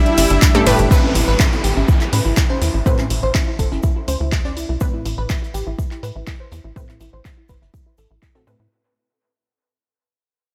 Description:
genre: progressive house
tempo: 123 BPM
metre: 4/4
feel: straight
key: A minor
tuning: A4 = 441 Hz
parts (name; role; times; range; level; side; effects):
- soft supersaw; melody; 0.0-0.8 s; G3 to E4; -24 LUFS; equal; sidechain pumping, delay
- soft supersaw; second line; 0.0-0.8 s; E5; -29 LUFS; equal; sidechain pumping, dub echo
- unison pluck; stabs; 0.0-8.7 s; G2 to B4; -22 LUFS; equal; sidechain pumping, dub echo
- glassy wavetable pluck; arpeggios; 0.1-8.7 s; D4 to D5; -27 LUFS; equal; chorus, sidechain pumping, dub echo
- deep house drum kit; drums; 0.1-8.6 s; handclaps, hi-hat, ride cymbal; -27 LUFS; equal; low-pass filter on hats, small room ambience, low-pass filter on cymbals, low-pass filter on snare
- tight sequencer bass; bass; 0.2-8.7 s; G1 to A2; -23 LUFS; equal; sidechain pumping
- jazz brush drum kit; drums; 0.2-8.6 s; hi-hat, shaker, snare drum; -35 LUFS; equal; high-pass filter on hats, small room ambience, high-pass filter on snare, high-pass filter on perc, high-pass filter on room
- congas; percussion; 0.2-4.5 s; none; -31 LUFS; equal; sidechain pumping on perc, small room ambience, sidechain pumping on toms
- electronic kick drum; drums; 0.4-8.3 s; none; -19 LUFS; equal; small room ambience
- downlifter; sound effects; 0.9-4.8 s; none; -29 LUFS; equal; none
room: light reverb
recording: none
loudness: -17 LUFS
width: mono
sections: 0.9-8.7 A section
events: fade-out 0.9-8.7; filter sweep on synth arpeggio sound 0.9-8.7; filter sweep on synth pluck 0.9-8.7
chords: 0.0 Gadd9; 0.9 Amadd9

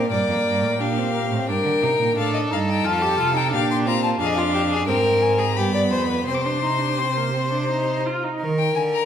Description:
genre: classical, baroque-style fugue for string quartet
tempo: 87 BPM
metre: 3/4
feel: straight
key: C minor from 4.2 s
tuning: A4 = 441 Hz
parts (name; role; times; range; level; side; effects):
- clear violin; melody; 0.0-9.1 s; Eb5 to D6; -25 LUFS; left 7 dB; none
- clear violin; second line; 0.0-9.1 s; F4 to D5; -23 LUFS; left 2 dB; none
- rich viola; accompaniment; 0.0-8.4 s; Bb3 to G4; -25 LUFS; right 2 dB; none
- rich cello; bass; 0.0-9.1 s; F2 to Eb3; -25 LUFS; right 4 dB; none
room: wet recital hall reverb, RT60 1.8 s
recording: minimal, uncompressed stereo recording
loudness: -19 LUFS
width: side -9 dB against mid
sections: 0.1-8.4 A section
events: none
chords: 0.1 Gm7; 1.5 Cm (rootless); 2.2 F7; 3.5 Bb; 4.2 Dm7b5/F; 5.6 G7; 6.3 Cm; 8.4 Cm (rootless)

